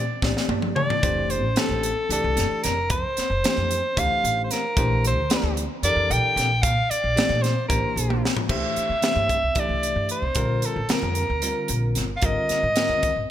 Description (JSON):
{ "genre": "electric jazz fusion", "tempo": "225 BPM (eighths)", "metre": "7/8", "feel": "straight", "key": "Bb lydian", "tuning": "A4 = 442 Hz", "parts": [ { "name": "warm soprano saxophone", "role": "melody", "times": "0.0-13.3 s", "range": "A4 to G5", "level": "-24 LUFS", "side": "equal", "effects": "none" }, { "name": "bell-like tine electric piano", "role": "accompaniment", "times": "0.0-13.1 s", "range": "D3 to D5", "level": "-30 LUFS", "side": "left 2 dB", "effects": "fast stereo tremolo" }, { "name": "upright bass", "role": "bass", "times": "0.0-13.3 s", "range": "F1 to C3", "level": "-27 LUFS", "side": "equal", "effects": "none" }, { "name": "crisp fusion drum kit", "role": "drums", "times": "0.2-13.2 s", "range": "crash cymbal, hi-hat, kick drum, snare drum, toms", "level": "-26 LUFS", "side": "equal", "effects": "gated reverb" } ], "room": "moderate plate reverb, RT60 2.1 s", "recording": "bright 1980s-style digital production", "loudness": "-20 LUFS", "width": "side -11 dB against mid", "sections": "0.0-8.5 A section; 8.5-13.3 B section", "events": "drum fill 0.2-1.0, 8.1-8.5", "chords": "0.0 Bbmaj13 (rootless); 1.0 F6; 4.8 Bbmaj13; 8.5 Cadd9; 10.4 Bb; 12.2 Abmaj9", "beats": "0.22 0.49 0.76 | 1.03 1.29 1.56 1.83 2.10 2.37 2.63 | 2.90 3.17 3.44 3.70 3.97 4.24 4.50 | 4.77 5.04 5.30 5.57 5.84 6.10 6.37 | 6.63 6.90 7.17 7.43 7.70 7.96 8.23 | 8.50 8.76 9.03 9.30 9.56 9.83 10.10 | 10.36 10.63 10.89 11.16 11.43 11.70 11.96 | 12.23 12.49 12.76 13.03 13.29" }